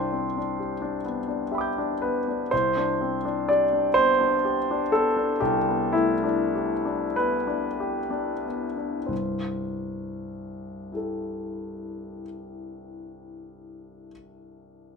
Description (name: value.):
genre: classical, impressionist solo piano.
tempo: 29-43 BPM (dotted quarters).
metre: 6/8.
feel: rubato.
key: C major.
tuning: A4 = 441 Hz.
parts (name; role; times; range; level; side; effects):
warm concert grand piano; solo; 0.0-15.0 s; C2 to G6; -24 LUFS; left 1 dB; none.
room: light reverb.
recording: minimal, uncompressed stereo recording.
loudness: -23 LUFS.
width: side -5 dB against mid.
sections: 0.0-2.5 A section; 2.5-9.1 B section; 9.1-12.8 C section.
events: slowing down 1.1-9.1.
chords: 0.0 Cmaj9; 9.1 C6.